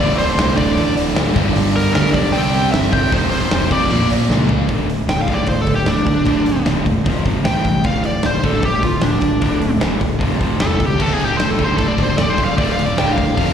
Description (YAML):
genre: hard rock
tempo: 152 BPM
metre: 4/4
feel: straight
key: D minor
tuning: A4 = 440 Hz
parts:
  - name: bluesy overdriven lead guitar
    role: melody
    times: 0.0-13.5 s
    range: D4 to G5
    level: -20 LUFS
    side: equal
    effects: distortion, slapback echo, analog delay
  - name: cranked stack guitar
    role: riff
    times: 0.0-13.5 s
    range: D2 to C4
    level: -24 LUFS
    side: left 9 dB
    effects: overdrive, slapback echo
  - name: crunchy overdriven guitar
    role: riff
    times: 0.0-13.5 s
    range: D2 to C4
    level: -23 LUFS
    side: right 10 dB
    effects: slapback echo
  - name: distorted electric guitar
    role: riff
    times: 0.0-4.7, 11.0-13.5 s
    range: D2 to C4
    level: -23 LUFS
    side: equal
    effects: overdrive, slapback echo
  - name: fuzz fingered electric bass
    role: bass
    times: 0.0-13.5 s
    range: D1 to D2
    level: -21 LUFS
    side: equal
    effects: overdrive
  - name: big rock drum kit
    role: drums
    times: 0.2-13.5 s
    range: crash cymbal, hi-hat, kick drum, snare drum, toms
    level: -20 LUFS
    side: equal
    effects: none
room: light reverb, small room ambience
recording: live gig heard through the venue's PA, recital hall reverb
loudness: -14 LUFS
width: side -8 dB against mid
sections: 0.0-4.7 A section; 4.7-13.5 B section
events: drum fill 4.3-4.7; lead electric guitar solo 4.7-13.5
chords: 0.0 D5; 1.3 G5; 2.3 C5; 3.1 F5; 3.9 Bb5; 4.7 D5; 7.1 F5; 7.5 A5; 7.8 D5; 10.2 F5; 10.6 E5; 11.0 D5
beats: 0.37 0.76 1.15 | 1.54 1.94 2.33 2.72 | 3.12 3.51 3.90 4.30 | 4.69 5.08 5.48 5.87 | 6.27 6.66 7.06 7.45 | 7.85 8.24 8.64 9.03 | 9.43 9.82 10.21 10.61 | 11.00 11.40 11.79 12.18 | 12.58 12.97 13.37